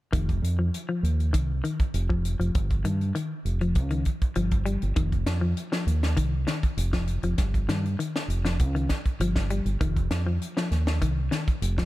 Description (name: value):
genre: afrobeat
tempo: 99 BPM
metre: 4/4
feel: straight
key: unclear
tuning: A4 = 440 Hz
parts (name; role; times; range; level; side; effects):
- semi-hollow electric guitar; arpeggios; 0.1-11.9 s; Eb3 to G3; -30 LUFS; left 3 dB; none
- fingered electric bass; bass; 0.1-11.9 s; F1 to G2; -26 LUFS; equal; none
- tight funk drum kit; drums; 0.1-11.9 s; hi-hat, kick drum, snare drum; -28 LUFS; equal; none
room: little or no reverb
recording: none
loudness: -24 LUFS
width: side -17 dB against mid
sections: 0.1-11.9 A section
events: none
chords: 0.1 F5; 2.6 Ebadd9; 5.0 F5; 7.4 Ebadd9; 9.8 F5